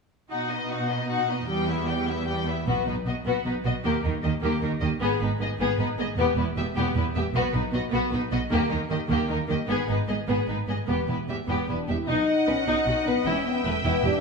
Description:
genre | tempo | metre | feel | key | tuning
cinematic | 102 BPM (dotted quarters) | 6/8 | straight | unclear | A4 = 439 Hz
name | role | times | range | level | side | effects
rich symphonic violin section | melody | 0.3-14.2 s | F#4 to G5 | -32 LUFS | left 3 dB | none
warm symphonic violin section | second line | 0.3-14.2 s | A#3 to E5 | -31 LUFS | left 4 dB | none
rich symphonic viola section | accompaniment | 0.3-14.1 s | G3 to B4 | -30 LUFS | right 1 dB | none
rich symphonic cello section | bass | 0.3-14.1 s | E2 to D#3 | -30 LUFS | right 2 dB | none
warm symphonic double bass section | bass | 2.7-14.1 s | E1 to D#2 | -30 LUFS | right 3 dB | none
mellow French horn section | sustained chords | 11.5-14.2 s | A3 to E4 | -25 LUFS | left 3 dB | none
room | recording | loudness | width
moderate recital hall reverb, RT60 1.9 s | studio ambience | -23 LUFS | side -4 dB against mid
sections
0.3-2.7 A section; 2.7-12.1 B section; 12.1-14.2 C section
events
build-up 2.7-12.1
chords
0.3 B; 1.5 Em; 2.7 B; 3.8 D#; 5.0 G#m; 6.2 Em; 7.3 B; 8.5 D#; 9.7 G#m; 10.9 Em; 12.1 B; 13.3 Em

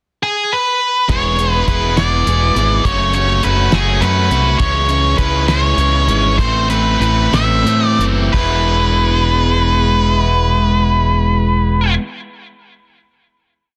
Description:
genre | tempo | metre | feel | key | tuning
indie rock | 58-69 BPM (dotted quarters) | 6/8 | straight | E major | A4 = 440 Hz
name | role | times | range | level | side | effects
octave-fuzz lead guitar | melody | 0.2-11.9 s | G#4 to E5 | -19 LUFS | equal | distortion, tape echo
overdriven electric guitar | riff | 1.1-12.0 s | E2 to G#4 | -24 LUFS | equal | subtle chorus
raw garage guitar | riff | 1.1-12.0 s | E3 to G#4 | -24 LUFS | equal | overdrive
growling fingered electric bass | bass | 1.1-12.0 s | E1 to A2 | -18 LUFS | equal | overdrive
cloth-damped thuddy drum kit | drums | 1.1-8.5 s | crash cymbal, hi-hat, kick drum, snare drum | -22 LUFS | equal | none
room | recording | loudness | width
light reverb, small room ambience | dense, heavily limited modern master | -14 LUFS | mono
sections
0.0-1.1 pickup bar; 1.1-8.3 verse; 8.3-12.5 final chord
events
slowing down 4.6-8.3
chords
0.0 N.C.; 1.1 E; 2.8 F#m; 4.6 C#m; 6.4 Am; 8.3 E

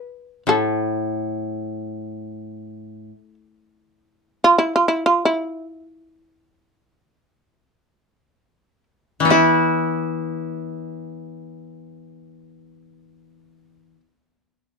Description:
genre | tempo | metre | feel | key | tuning
japanese traditional, Japanese chamber music | free time | none | none | unclear | A4 = 435 Hz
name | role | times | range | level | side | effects
shamisen | melody | 0.0-14.0 s | E4 to B4 | -18 LUFS | right 1 dB | none
koto | accompaniment | 0.5-3.1, 9.2-14.0 s | A2 to E4 | -21 LUFS | left 2 dB | none
room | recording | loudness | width
light reverb | dark, warm production | -18 LUFS | side -4 dB against mid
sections
0.0-9.3 A section; 9.3-13.7 B section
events
slowing down 1.0-9.3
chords
none

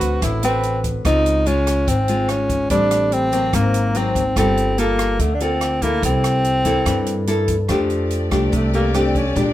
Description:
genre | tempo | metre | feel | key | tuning
bossa nova | 144 BPM | 4/4 | straight | F major | A4 = 440 Hz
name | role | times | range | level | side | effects
breathy tenor saxophone | melody | 0.0-9.5 s | A3 to F#4 | -20 LUFS | equal | none
nylon-string guitar | accompaniment | 0.0-9.5 s | G2 to B4 | -21 LUFS | left 2 dB | none
upright bass | bass | 0.0-9.5 s | G1 to G2 | -22 LUFS | right 1 dB | none
open jazz drum kit | drums | 0.0-9.5 s | hi-hat, kick drum, rim click | -26 LUFS | equal | none
warm symphonic string section | sustained chords | 7.7-9.5 s | Ab3 to D5 | -28 LUFS | right 1 dB | none
room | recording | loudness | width
light reverb | none | -16 LUFS | side -14 dB against mid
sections
0.0-7.7 A section; 7.7-9.5 B section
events
tenor saxophone solo 7.7-9.5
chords
0.0 D6; 1.0 Dbmaj7; 2.7 Bbmaj13/A; 3.5 Ab9; 4.4 Gm9; 6.0 C6; 7.7 F69

